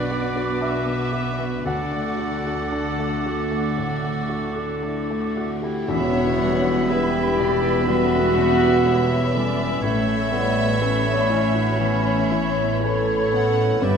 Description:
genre	cinematic, emotional film score for orchestra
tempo	55-62 BPM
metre	4/4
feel	rubato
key	unclear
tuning	A4 = 440 Hz
part	rich studio violin section	melody	0.0-14.0 s	B4 to F#5	-33 LUFS	left 2 dB	none
part	clear oboe	second line	0.0-14.0 s	A4 to E5	-30 LUFS	right 2 dB	none
part	flute section	second line	0.0-14.0 s	B5 to D6	-32 LUFS	right 2 dB	none
part	mellow clarinet	second line	0.0-14.0 s	G3 to G4	-31 LUFS	right 2 dB	none
part	warm chamber violin section	second line	0.0-14.0 s	F#4 to F#5	-32 LUFS	equal	none
part	dark symphonic viola section	accompaniment	0.0-14.0 s	A3 to D5	-32 LUFS	right 3 dB	none
part	felt-muted upright piano	accompaniment	0.0-14.0 s	D2 to F#5	-28 LUFS	left 2 dB	none
part	mellow French horn section	sustained chords	0.0-14.0 s	A3 to B4	-25 LUFS	left 1 dB	none
part	concert harp	arpeggios	0.0-14.0 s	G2 to B5	-29 LUFS	left 8 dB	none
part	warm symphonic cello section	bass	0.0-14.0 s	E2 to D3	-28 LUFS	right 4 dB	none
part	warm symphonic double bass section	bass	0.0-14.0 s	E1 to D2	-29 LUFS	right 4 dB	none
part	cymbal swell and tam-tam	percussion	1.7-9.8 s	none	-34 LUFS	left 2 dB	none
room	wet scoring stage reverb, RT60 1.7 s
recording	none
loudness	-19 LUFS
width	side -6 dB against mid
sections	0.0-5.9 A section; 5.9-14.0 B section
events	band accent 5.9-6.9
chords	0.0 Bm; 1.6 D; 5.9 Emadd9; 9.8 Aadd9

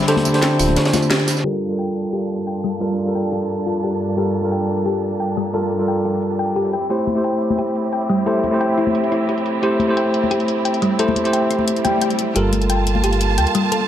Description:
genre	liquid drum and bass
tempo	176 BPM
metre	4/4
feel	straight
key	G dorian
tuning	A4 = 440 Hz
part	bell-like tine electric piano	accompaniment	0.0-13.9 s	D3 to C5	-20 LUFS	equal	low-pass filter, digital delay
part	warm symphonic string section	sustained chords	0.0-13.9 s	G2 to A5	-26 LUFS	right 2 dB	low-pass filter
part	thumb-piano-like synth pluck	arpeggios	0.0-13.8 s	G3 to G5	-23 LUFS	left 3 dB	chorus, tape echo
part	crunchy breakbeat drum kit	drums	0.0-1.4 s	hi-hat, snare drum	-25 LUFS	equal	high-pass filter on hats, high-pass filter on snare, high-pass filter on room
part	drum and bass drum kit	drums	0.0-13.8 s	crash cymbal, hi-hat, snare drum, tambourine	-24 LUFS	equal	high-pass filter on hats, high-pass filter on perc, high-pass filter on snare, high-pass filter on cymbals, high-pass filter on room
part	congas	percussion	0.2-1.0, 7.1-13.0 s	none	-26 LUFS	left 5 dB	none
part	dark detuned saw bass	bass	0.6-0.8, 12.4-13.5 s	D1 to D2	-19 LUFS	equal	none
part	swell and riser	sound effects	11.8-13.9 s	none	-29 LUFS	right 2 dB	none
room	moderate plate reverb, RT60 1.9 s, small room ambience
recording	low-pass filter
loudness	-16 LUFS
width	side -11 dB against mid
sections	0.0-1.4 A section; 1.4-12.4 B section; 12.4-13.9 C section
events	drop 0.0-1.4; band accent 1.1; filter sweep on tine electric piano 1.4-12.4; filter sweep on string section 1.4-12.4; filter sweep on synth arpeggio sound 1.4-12.4; filter sweep 1.4-12.4; swell 11.8-12.4; build-up 12.4-13.9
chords	0.0 D7sus4; 1.4 Gm9; 6.7 Am7; 12.4 Gm9

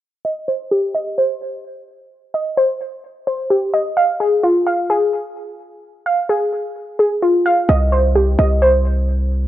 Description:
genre	hip hop, trap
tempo	129 BPM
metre	4/4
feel	half-time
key	C minor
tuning	A4 = 443 Hz
part	warbly dusty pluck	arpeggios	0.2-9.5 s	F4 to F5	-16 LUFS	equal	chorus, low-pass filter, analog delay
part	hard-hitting 808-style bass	bass	7.7-9.5 s	C2	-15 LUFS	equal	none
room	digital ambience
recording	dry, gritty hardware recording, transformer saturation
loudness	-15 LUFS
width	side -13 dB against mid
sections	0.2-7.7 A section; 7.7-9.5 B section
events	filter sweep on synth pluck 0.2-7.7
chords	0.2 Cm; 4.0 Fm; 7.7 Cm

